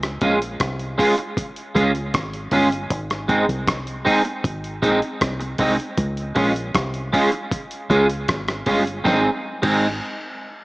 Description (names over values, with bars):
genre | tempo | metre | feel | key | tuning
roots reggae | 78 BPM | 4/4 | straight | Ab major | A4 = 440 Hz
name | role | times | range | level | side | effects
deep dub fingered electric bass | bass | 0.0-10.0 s | G1 to Db2 | -27 LUFS | equal | none
dusty soul sampler-style drum kit | drums | 0.0-9.8 s | crash cymbal, hi-hat, kick drum, rim click, snare drum | -25 LUFS | equal | none
electric guitar at the edge of break-up | accompaniment | 0.2-9.9 s | Ab3 to Ab4 | -20 LUFS | right 1 dB | ensemble chorus, dub echo
room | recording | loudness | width
light reverb, digital ambience | small speaker sound | -19 LUFS | side -21 dB against mid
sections
0.0-9.1 A section; 9.1-10.6 B section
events
none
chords
0.0 Db; 2.9 Ab; 6.0 Db; 9.1 Ab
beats
0.60 1.37 2.14 | 2.91 3.67 4.44 5.21 | 5.98 6.75 7.52 8.29 | 9.05 9.82